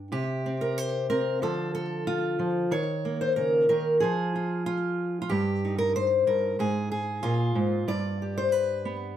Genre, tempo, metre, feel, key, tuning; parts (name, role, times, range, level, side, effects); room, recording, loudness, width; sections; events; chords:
folk, solo fingerstyle acoustic guitar; 93 BPM; 4/4; straight; A4 = 441 Hz
fingerpicked steel-string acoustic guitar; solo; 0.0-9.2 s; G2 to G5; -24 LUFS; equal; slapback echo
wet studio ambience, RT60 0.5 s; -24 LUFS; side -10 dB against mid
0.1-9.2 A section
0.1 N.C.; 1.4 Dm; 2.7 Eb5; 4.0 N.C.; 5.3 Eb6/G; 6.6 Fmadd11/Ab; 7.9 G